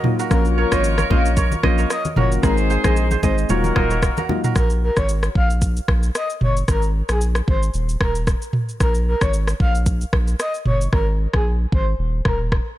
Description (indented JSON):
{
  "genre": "afrobeats",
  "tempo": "113 BPM",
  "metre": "4/4",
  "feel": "swing 55% on 16ths",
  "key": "unclear",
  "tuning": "A4 = 443 Hz",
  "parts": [
    { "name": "clear horn section", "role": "second line", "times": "0.0-4.3 s", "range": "Bb3 to Db5", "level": "-27 LUFS", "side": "left 2 dB", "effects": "none" },
    { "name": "soft electric-piano-like synth keys", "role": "accompaniment", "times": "0.0-4.5 s", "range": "F3 to Ab4", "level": "-24 LUFS", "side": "left 3 dB", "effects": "chorus" },
    { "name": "kora", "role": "riff", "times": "0.0-5.9 s", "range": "Gb4 to Eb5", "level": "-26 LUFS", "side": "right 8 dB", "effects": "ping-pong delay" },
    { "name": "afro-pop drum kit", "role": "drums", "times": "0.0-12.7 s", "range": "kick drum, rim click, shaker, toms", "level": "-20 LUFS", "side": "equal", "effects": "vintage 12-bit sampler grit" },
    { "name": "congas", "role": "percussion", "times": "0.0-4.4 s", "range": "none", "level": "-28 LUFS", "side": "left 2 dB", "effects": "none" },
    { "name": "breathy flute-like synth lead", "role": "melody", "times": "0.3-12.4 s", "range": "Ab4 to F5", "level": "-26 LUFS", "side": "left 1 dB", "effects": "chorus, ping-pong delay" },
    { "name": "saturated sub bass", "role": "bass", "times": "0.3-12.6 s", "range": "Eb1 to Bb1", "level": "-20 LUFS", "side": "equal", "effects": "none" }
  ],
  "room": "digital ambience",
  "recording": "none",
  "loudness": "-17 LUFS",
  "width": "side -14 dB against mid",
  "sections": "0.0-4.6 A section; 4.6-12.8 B section",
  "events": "hi-hats muted 10.9-12.8",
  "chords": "0.3 Bbm; 2.4 Ab; 3.5 Ebmadd9; 4.6 Gb69; 6.7 Absus2; 7.7 Eb5; 8.8 Gbadd9 (rootless); 10.9 Absus2; 12.0 Eb5"
}